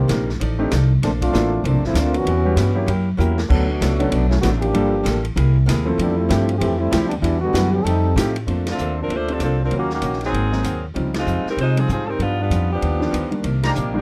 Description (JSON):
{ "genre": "jazz, big band swing", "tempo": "193 BPM", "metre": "4/4", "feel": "swing 60% on 8ths", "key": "Bb major from 8.5 s", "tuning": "A4 = 443 Hz", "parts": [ { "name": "clear trombone section", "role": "second line", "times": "0.0-8.2 s", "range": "D3 to A4", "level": "-24 LUFS", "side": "equal", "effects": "none" }, { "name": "upright bass", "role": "bass", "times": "0.0-14.0 s", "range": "G1 to C3", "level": "-22 LUFS", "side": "equal", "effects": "none" }, { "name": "archtop guitar, miked and amplified", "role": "accompaniment", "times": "0.1-14.0 s", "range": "G2 to D5", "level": "-31 LUFS", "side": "equal", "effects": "none" }, { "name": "swinging big-band drum kit", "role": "drums", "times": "0.1-13.8 s", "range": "crash cymbal, hi-hat, kick drum, ride cymbal, snare drum", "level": "-30 LUFS", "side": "equal", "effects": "none" }, { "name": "warm concert grand piano", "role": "accompaniment", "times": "0.6-14.0 s", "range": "Eb3 to Bb4", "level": "-26 LUFS", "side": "equal", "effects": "none" }, { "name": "warm saxophone section", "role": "melody", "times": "8.7-14.0 s", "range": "Eb3 to C5", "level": "-26 LUFS", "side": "equal", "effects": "none" }, { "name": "clear trumpet section", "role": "stabs", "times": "13.6-13.7 s", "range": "Eb4 to Bb5", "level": "-27 LUFS", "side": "equal", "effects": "none" } ], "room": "little or no reverb", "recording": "dry, close 1970s-style studio recording", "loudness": "-19 LUFS", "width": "mono", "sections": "0.0-8.5 A section; 8.5-14.0 B section", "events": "trombone section solo 0.0-8.5; drum fill 3.2-3.5; band accent 8.6, 11.1, 13.6", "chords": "0.4 F13; 1.0 Bbmaj9; 2.3 C#m7b5; 2.9 F#7b9; 3.5 Bm7; 4.7 Gm9; 5.4 C7alt; 6.0 Fmaj9; 7.2 Em9; 7.8 F9; 8.5 Bbmaj9; 9.7 Ebm7; 10.3 Ab9; 11.0 Dbmaj9#11; 12.2 G7b13; 13.4 Cm9" }